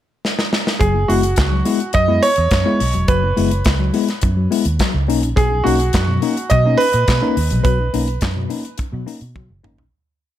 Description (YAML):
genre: disco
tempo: 105 BPM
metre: 4/4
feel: straight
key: B major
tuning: A4 = 441 Hz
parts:
  - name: modern studio drum kit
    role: drums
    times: 0.2-9.9 s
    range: handclaps, hi-hat, kick drum, snare drum, toms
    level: -20 LUFS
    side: equal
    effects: none
  - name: clear grand piano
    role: melody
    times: 0.8-8.7 s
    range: F#4 to D#5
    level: -19 LUFS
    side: right 2 dB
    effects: tape echo
  - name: tine electric piano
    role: accompaniment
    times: 0.8-9.8 s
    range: B2 to E4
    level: -20 LUFS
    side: left 5 dB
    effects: medium stereo tremolo
  - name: vintage muted fingered electric bass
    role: bass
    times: 0.8-9.9 s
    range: E1 to B2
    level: -19 LUFS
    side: right 1 dB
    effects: none
room: light reverb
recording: none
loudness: -14 LUFS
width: side -12 dB against mid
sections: 0.0-0.8 pickup bar; 0.8-9.9 verse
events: drum fill 0.2-0.8, 9.4-9.9; fade-out 7.6-9.9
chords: 0.0 N.C.; 0.8 F#7sus4; 5.1 Bmaj7